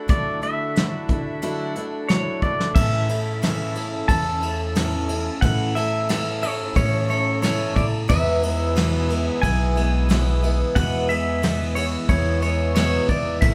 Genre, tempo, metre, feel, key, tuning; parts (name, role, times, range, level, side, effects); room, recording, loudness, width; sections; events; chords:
folk rock and heartland rock; 90 BPM; 4/4; straight; E mixolydian; A4 = 440 Hz
pedal steel guitar; melody; 0.0-13.5 s; C#5 to A5; -28 LUFS; equal
picked twelve-string acoustic guitar; accompaniment; 0.0-13.5 s; E2 to E4; -29 LUFS; equal
accordion; sustained chords; 0.0-13.5 s; C#3 to E5; -36 LUFS; equal
upright bass; bass; 0.1-13.5 s; A1 to D3; -27 LUFS; equal
soft brush drum kit; drums; 0.1-13.5 s; crash cymbal, hi-hat, kick drum, ride cymbal, snare drum; -26 LUFS; equal
moderate large studio reverb, RT60 0.8 s; band playing live in one room; -22 LUFS; mono
0.0-2.8 A section; 2.8-13.5 B section
drum fill 2.4-2.8
0.0 Dadd9; 2.8 A; 8.1 E